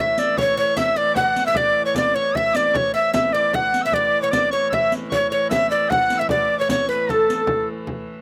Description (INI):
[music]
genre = medieval dance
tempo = 152 BPM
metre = 3/4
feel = straight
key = A major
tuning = A4 = 443 Hz
[part]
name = tenor recorder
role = melody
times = 0.0-7.7 s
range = A4 to F#5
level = -21 LUFS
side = equal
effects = none
[part]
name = bright shawm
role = second line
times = 0.0-7.7 s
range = F#5 to E6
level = -31 LUFS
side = equal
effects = slapback echo
[part]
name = oud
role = second line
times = 0.0-7.6 s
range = A4 to F#5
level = -31 LUFS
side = equal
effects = slapback echo
[part]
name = rich hurdy-gurdy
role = drone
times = 0.0-8.2 s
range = A2 to E3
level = -34 LUFS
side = equal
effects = none
[part]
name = frame drum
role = percussion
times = 0.2-8.1 s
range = none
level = -32 LUFS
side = equal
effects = none
[part]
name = riq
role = percussion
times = 0.2-7.5 s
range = none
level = -31 LUFS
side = equal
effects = none
[sound]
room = light reverb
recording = recorded outdoors, with no room sound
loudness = -20 LUFS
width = mono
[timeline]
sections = 0.0-7.9 A section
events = none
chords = none